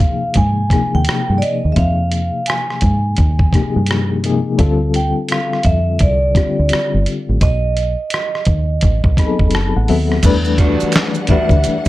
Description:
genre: R&B, neo-soul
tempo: 85 BPM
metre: 4/4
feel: swing 61% on 16ths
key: unclear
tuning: A4 = 436 Hz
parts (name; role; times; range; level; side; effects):
- vibraphone with medium hard mallets; melody; 0.0-11.9 s; D5 to Ab5; -21 LUFS; right 2 dB; none
- mellow reed electric piano; accompaniment; 0.0-11.9 s; C3 to B5; -19 LUFS; left 4 dB; fast tremolo
- dusty soul sampler-style drum kit; drums; 0.0-11.9 s; crash cymbal, handclaps, hi-hat, kick drum, rim click, snare drum; -17 LUFS; equal; none
- deep dub fingered electric bass; bass; 0.4-11.7 s; F#1 to Ab2; -16 LUFS; equal; none
- warm studio string section; sustained chords; 10.2-11.9 s; E3 to F#5; -27 LUFS; equal; none
- maracas and finger snaps; percussion; 10.2-11.9 s; none; -28 LUFS; right 11 dB; none
- electric guitar through a small old amp; second line; 10.6-11.5 s; G3 to F#4; -21 LUFS; right 4 dB; none
room: light reverb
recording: dark, warm production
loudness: -13 LUFS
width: side -16 dB against mid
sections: 0.0-10.2 A section; 10.2-11.9 B section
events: reed electric piano fill 8.8-10.2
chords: 0.0 Fm11; 4.6 Dm7; 7.4 B7b9; 10.2 Em9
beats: 0.35 1.06 | 1.76 2.47 3.18 3.88 | 4.59 5.29 6.00 6.71 | 7.41 8.12 8.82 9.53 | 10.23 10.94 11.65

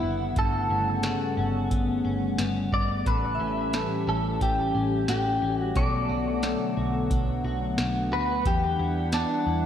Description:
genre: dream pop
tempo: 89 BPM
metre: 4/4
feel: straight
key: B minor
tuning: A4 = 440 Hz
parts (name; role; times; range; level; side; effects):
- clean electric guitar; melody; 0.0-9.7 s; D4 to D5; -29 LUFS; left 1 dB; wide subtle chorus, analog delay
- hollow soft pad; sustained chords; 0.0-9.7 s; C#3 to F#5; -29 LUFS; equal; chorus
- clean electric guitar; arpeggios; 0.0-9.7 s; G2 to A4; -32 LUFS; left 4 dB; analog chorus, analog delay
- vintage muted picked electric bass; bass; 0.0-9.7 s; F#1 to E2; -31 LUFS; equal; none
- booming analog drum machine; drums; 0.4-9.3 s; hi-hat, kick drum, snare drum; -28 LUFS; equal; none
- shimmering bell with halo; texture; 3.3-4.8 s; E5; -41 LUFS; equal; ensemble chorus, analog delay
room: wet lush hall reverb, RT60 2.0 s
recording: dreamy mix soaked in reverb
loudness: -24 LUFS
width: side -9 dB against mid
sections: 0.0-9.7 A section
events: none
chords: 0.4 Gmaj9#11; 3.1 A7; 5.8 Bm7; 8.5 Em9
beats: | 0.36 1.04 1.71 2.39 | 3.06 3.74 4.41 5.08 | 5.76 6.43 7.11 7.78 | 8.46 9.13

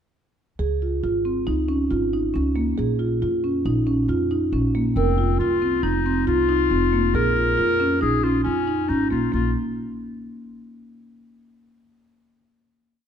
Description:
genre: contemporary instrumental, chamber music in an uneven meter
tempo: 137 BPM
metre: 5/4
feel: straight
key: Bb minor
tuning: A4 = 440 Hz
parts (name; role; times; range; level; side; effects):
- marimba with soft mallets; arpeggios; 0.6-9.5 s; Bb3 to Bb4; -22 LUFS; right 2 dB; none
- upright bass; bass; 0.6-9.5 s; F1 to F2; -25 LUFS; equal; none
- clear clarinet; second line; 5.0-9.5 s; C4 to Bb4; -23 LUFS; left 7 dB; none
room: moderate recital hall reverb, RT60 1.8 s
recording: dark, warm production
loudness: -19 LUFS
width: side -8 dB against mid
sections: 0.6-9.3 A section; 9.3-11.5 final chord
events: none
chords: 0.6 Db; 2.8 Bbm; 5.0 F5; 7.1 Bbm7; 9.3 Bb5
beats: | 0.59 1.03 1.47 1.90 2.34 | 2.78 3.21 3.65 4.09 4.52 | 4.96 5.40 5.83 6.27 6.71 | 7.15 7.58 8.02 8.46 8.89 | 9.33

